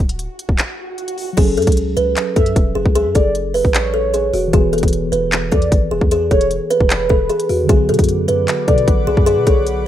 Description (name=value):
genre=hip hop, trap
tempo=152 BPM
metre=4/4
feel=half-time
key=F# minor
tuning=A4 = 440 Hz
part: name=long sustained 808-style bass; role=bass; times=0.0-9.9 s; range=D1 to B2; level=-22 LUFS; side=equal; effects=none
part: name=swell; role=sound effects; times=0.1-1.4 s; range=none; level=-30 LUFS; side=right 3 dB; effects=none
part: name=trap drum kit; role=drums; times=0.1-9.8 s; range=crash cymbal, handclaps, hi-hat, kick drum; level=-16 LUFS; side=equal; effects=none
part: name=mellow tine electric piano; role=accompaniment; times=1.3-9.9 s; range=D3 to B4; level=-24 LUFS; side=right 1 dB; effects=medium stereo tremolo
part: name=kalimba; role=melody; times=1.4-9.6 s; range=F#4 to B4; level=-17 LUFS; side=equal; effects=none
part: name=warm velvety synth lead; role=second line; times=2.4-9.7 s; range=B4 to E5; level=-23 LUFS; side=right 1 dB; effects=chorus, ping-pong delay
part: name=airy breathy pad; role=sustained chords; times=8.2-9.9 s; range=B4 to D6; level=-28 LUFS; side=left 1 dB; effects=chorus
room=light reverb, digital ambience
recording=rough home demo mix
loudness=-13 LUFS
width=side -11 dB against mid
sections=0.0-1.4 A section; 1.4-9.9 B section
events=break 0.0-1.4; swell 0.1-1.4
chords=0.0 N.C.; 1.4 F#m; 4.5 E; 7.7 Bm